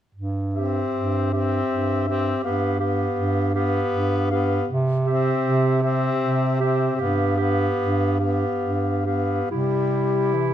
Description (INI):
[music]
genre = classical, lyrical piece for single-reed quartet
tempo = 64-83 BPM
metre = 3/4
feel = rubato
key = C major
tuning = A4 = 440 Hz
[part]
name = warm bass clarinet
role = bass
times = 0.1-10.5 s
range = G2 to C3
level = -23 LUFS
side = right 2 dB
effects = none
[part]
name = mellow clarinet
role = melody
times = 0.5-10.5 s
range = G4 to F5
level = -29 LUFS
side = left 10 dB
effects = none
[part]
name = bright clarinet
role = second line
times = 0.5-10.5 s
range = E4 to G4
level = -27 LUFS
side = right 7 dB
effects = none
[part]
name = clear tenor saxophone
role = accompaniment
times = 0.5-10.5 s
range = E3 to C4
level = -26 LUFS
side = left 4 dB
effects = none
[sound]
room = moderate recital hall reverb, RT60 1.5 s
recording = close, detailed microphones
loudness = -20 LUFS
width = side -10 dB against mid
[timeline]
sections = 0.1-9.5 A section; 9.5-10.5 B section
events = none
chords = 0.1 C/G; 2.4 G7; 4.7 C; 7.0 G7; 9.5 C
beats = | 0.14 0.93 1.69 | 2.43 3.16 3.92 | 4.68 5.43 6.21 | 7.00 7.80 8.62 | 9.52 10.33